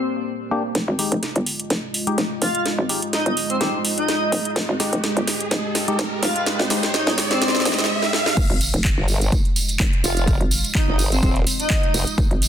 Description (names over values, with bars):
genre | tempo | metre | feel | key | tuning
bass house | 126 BPM | 4/4 | swing 55% on 16ths | F minor | A4 = 439 Hz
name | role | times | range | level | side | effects
airy dreamy lead | melody | 0.0-12.1 s | C4 to F4 | -25 LUFS | left 1 dB | chorus, ping-pong delay
dark analog pad | sustained chords | 0.0-12.5 s | Ab3 to Eb5 | -29 LUFS | right 2 dB | chorus, sidechain pumping
percussive organ stab | stabs | 0.5-6.8 s | Ab3 to G4 | -27 LUFS | left 2 dB | chorus, sidechain pumping, ping-pong delay
hollow knocking FM bass | bass | 0.8-12.5 s | Eb1 to Ab1 | -24 LUFS | equal | overdrive, sidechain pumping, high-pass filter
house drum kit | drums | 0.8-12.5 s | crash cymbal, handclaps, hi-hat, snare drum | -24 LUFS | equal | overdrive, high-pass filter on snare, high-pass filter on hats, high-pass filter on cymbals, high-pass filter on room
riser | sound effects | 3.0-8.4 s | none | -27 LUFS | right 2 dB | none
electronic kick drum | drums | 8.4-12.3 s | none | -21 LUFS | equal | overdrive
tambourine | percussion | 8.4-12.5 s | none | -27 LUFS | right 3 dB | none
formant-sweep wobble bass | bass | 9.0-12.1 s | Eb1 to G1 | -21 LUFS | equal | chorus, tube saturation, sidechain pumping
room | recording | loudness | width
light reverb | dense, heavily limited modern master | -18 LUFS | side -10 dB against mid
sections
0.8-8.4 A section; 8.4-12.5 B section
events
build-up 0.8-8.4; drum fill 0.8-7.9, 8.0-8.4; riser 3.0-8.4; drop 8.4-12.5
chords
0.0 Gm; 0.8 Fm7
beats
0.28 | 0.75 1.23 1.70 2.18 | 2.66 3.13 3.61 4.08 | 4.56 5.04 5.51 5.99 | 6.47 6.94 7.42 7.89 | 8.37 8.85 9.32 9.80 | 10.28 10.75 11.23 11.70 | 12.18